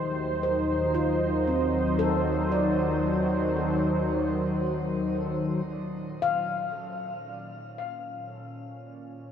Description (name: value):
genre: ambient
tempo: 57 BPM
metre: 3/4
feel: straight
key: unclear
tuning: A4 = 440 Hz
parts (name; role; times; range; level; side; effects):
- warm analog pad; sustained chords; 0.0-9.3 s; Bb2 to C5; -27 LUFS; equal; chorus, shimmer reverb
- handpan; arpeggios; 0.0-8.3 s; A3 to F5; -31 LUFS; left 1 dB; tape echo, shimmer reverb
- deep rumbling drone; bass; 0.1-5.6 s; Eb2; -35 LUFS; equal; built-in reverb
room: wet cathedral reverb, RT60 6.7 s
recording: cassette tape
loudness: -24 LUFS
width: side -8 dB against mid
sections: 0.0-5.7 A section; 5.7-9.3 B section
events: none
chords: 0.0 Ebm6; 5.7 Bbmadd9